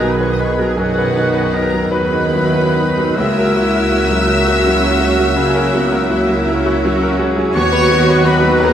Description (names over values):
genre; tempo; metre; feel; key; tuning
classical, romantic movement for piano and orchestra; 47-56 BPM (dotted quarters); 12/8; rubato; B major; A4 = 442 Hz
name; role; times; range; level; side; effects
bright grand piano; melody; 0.0-8.7 s; B1 to B4; -18 LUFS; left 1 dB; none
rich chamber violin section; melody; 0.0-8.7 s; F#5 to E6; -25 LUFS; left 3 dB; none
clear chamber violin section; second line; 0.0-8.7 s; F#4 to E5; -26 LUFS; left 6 dB; none
clear oboe; second line; 0.0-8.7 s; F#4 to E5; -26 LUFS; equal; none
hollow concert flute; second line; 0.0-8.7 s; F#6; -26 LUFS; left 1 dB; none
warm clarinet; second line; 0.0-8.7 s; A#4 to B4; -26 LUFS; left 1 dB; none
dark bassoon; accompaniment; 0.0-8.7 s; D#3 to F#3; -24 LUFS; right 2 dB; none
rich chamber viola section; accompaniment; 0.0-8.7 s; A#3 to G#4; -23 LUFS; right 2 dB; none
mellow French horn section; sustained chords; 0.0-8.7 s; A#3 to F#4; -22 LUFS; left 4 dB; none
warm trombone section; sustained chords; 0.0-8.7 s; C#3 to F#3; -24 LUFS; right 3 dB; none
clear trumpet section; stabs; 0.0-8.7 s; F#4 to E5; -24 LUFS; equal; none
warm chamber cello section; bass; 0.0-8.7 s; D#4 to A#4; -25 LUFS; right 4 dB; none
warm chamber double bass section; bass; 0.0-8.7 s; B1 to D#2; -21 LUFS; right 3 dB; none
room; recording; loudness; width
wet recital hall reverb, RT60 1.2 s; none; -12 LUFS; side -9 dB against mid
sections
0.0-8.7 A section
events
none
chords
0.0 B; 3.2 F#7/C#; 7.6 B/D#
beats
0.79 1.92 | 3.16 4.29 5.39 6.48 | 7.56 8.63